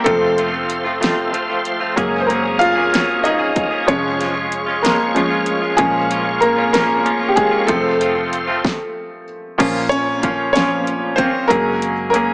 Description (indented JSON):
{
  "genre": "six-eight pop ballad",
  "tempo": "63 BPM (dotted quarters)",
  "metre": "6/8",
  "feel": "straight",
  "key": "Bb minor",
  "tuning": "A4 = 440 Hz",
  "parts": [
    { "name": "clear upright piano", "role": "accompaniment", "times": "0.0-12.3 s", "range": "F3 to F5", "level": "-17 LUFS", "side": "equal", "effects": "none" },
    { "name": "bright tonewheel organ", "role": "sustained chords", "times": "0.0-8.6 s", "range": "Ab4 to Db6", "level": "-24 LUFS", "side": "equal", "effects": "chorus vibrato, slow rotary speaker" },
    { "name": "direct-recorded clean electric guitar", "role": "arpeggios", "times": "0.0-12.3 s", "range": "F2 to Ab4", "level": "-21 LUFS", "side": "equal", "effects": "tremolo" },
    { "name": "vintage muted fingered electric bass", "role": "bass", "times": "0.1-12.3 s", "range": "F1 to Bb1", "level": "-36 LUFS", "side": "equal", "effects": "none" },
    { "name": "pop drum kit", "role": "drums", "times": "0.1-12.3 s", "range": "crash cymbal, hi-hat, kick drum, snare drum", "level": "-22 LUFS", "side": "equal", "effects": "overdrive" }
  ],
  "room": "moderate plate reverb, RT60 2.1 s",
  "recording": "small speaker sound",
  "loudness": "-14 LUFS",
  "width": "side -32 dB against mid",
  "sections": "0.0-9.6 A section; 9.6-12.3 B section",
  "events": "upright piano solo 0.0-9.6, 9.6-12.3; stop 8.6-9.6",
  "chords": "0.1 F; 2.0 Gbadd9; 3.9 Db/F; 5.8 Bbm; 7.7 F; 9.6 Bbm; 11.5 Gbadd9"
}